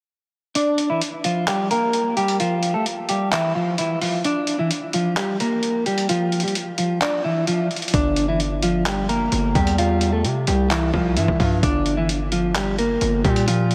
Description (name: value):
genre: hip hop, trap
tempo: 130 BPM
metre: 4/4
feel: half-time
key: G dorian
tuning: A4 = 440 Hz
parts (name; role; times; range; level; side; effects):
- clean electric guitar; melody; 0.6-13.7 s; E3 to D5; -23 LUFS; equal; subtle chorus, low-pass filter, diffuse ambient delay
- lo-fi sampler-style drum kit; drums; 0.6-13.7 s; handclaps, hi-hat, kick drum; -27 LUFS; equal; none
- distorted 808-style bass; bass; 7.9-13.7 s; G1 to C3; -25 LUFS; equal; distortion
room: moderate huge ambient reverb, RT60 4.2 s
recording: dreamy mix soaked in reverb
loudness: -21 LUFS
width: mono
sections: 0.6-13.7 A section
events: kick muted 0.6-7.9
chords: 0.6 Gm; 2.4 Fmaj7sus2; 4.2 Gm; 6.1 Dmadd9; 7.9 Gm; 9.8 Csus4; 11.6 Gm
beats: | 0.55 1.01 1.48 1.94 | 2.40 2.86 3.32 3.78 | 4.25 4.71 5.17 5.63 | 6.09 6.55 7.01 7.48 | 7.94 8.40 8.86 9.32 | 9.78 10.24 10.71 11.17 | 11.63 12.09 12.55 13.02 | 13.48